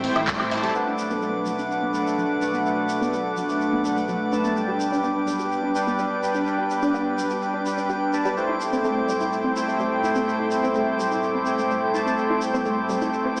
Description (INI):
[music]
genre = progressive house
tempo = 126 BPM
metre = 4/4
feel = straight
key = unclear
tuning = A4 = 438 Hz
[part]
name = airy breathy pad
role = sustained chords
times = 0.0-13.4 s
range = G2 to A4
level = -32 LUFS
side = equal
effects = chorus, sidechain pumping
[part]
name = unison pluck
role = arpeggios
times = 0.0-13.3 s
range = F#3 to G4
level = -32 LUFS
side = equal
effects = vintage 12-bit sampler grit, sidechain pumping, dub echo
[part]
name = soft supersaw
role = stabs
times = 0.0-13.4 s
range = G3 to A5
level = -26 LUFS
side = equal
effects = sidechain pumping, low-pass filter, dub echo
[part]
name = plucky analog bass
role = bass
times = 0.0-0.7 s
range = A1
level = -39 LUFS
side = equal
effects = sidechain pumping
[part]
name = damped 70s drum kit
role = drums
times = 0.0-13.4 s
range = none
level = barely audible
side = none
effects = none
[part]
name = house drum kit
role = drums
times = 0.0-0.7 s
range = handclaps, hi-hat, woodblock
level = -31 LUFS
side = equal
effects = small room reverb
[part]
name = drifting glass-harmonics texture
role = texture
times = 0.0-13.4 s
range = D6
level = -36 LUFS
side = equal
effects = chorus, built-in reverb, sidechain pumping
[part]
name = tube shaker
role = percussion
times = 0.7-13.4 s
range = none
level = -44 LUFS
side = equal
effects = none
[sound]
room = wet lush hall reverb, RT60 2.0 s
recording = played on a big sound system in a bare room, stone room reverb, small speaker sound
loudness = -24 LUFS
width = mono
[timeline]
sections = 0.8-13.4 A section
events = band accent 0.3; filter sweep on synth pluck 0.8-13.4; filter sweep on analog synth pad 0.8-13.4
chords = 0.0 Am7; 0.8 Bm7; 4.6 G; 8.4 Am7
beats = 0.28 | 0.75 1.23 1.70 2.18 | 2.66 3.13 3.61 4.08 | 4.56 5.04 5.51 5.99 | 6.47 6.94 7.42 7.89 | 8.37 8.85 9.32 9.80 | 10.28 10.75 11.23 11.70 | 12.18 12.66 13.13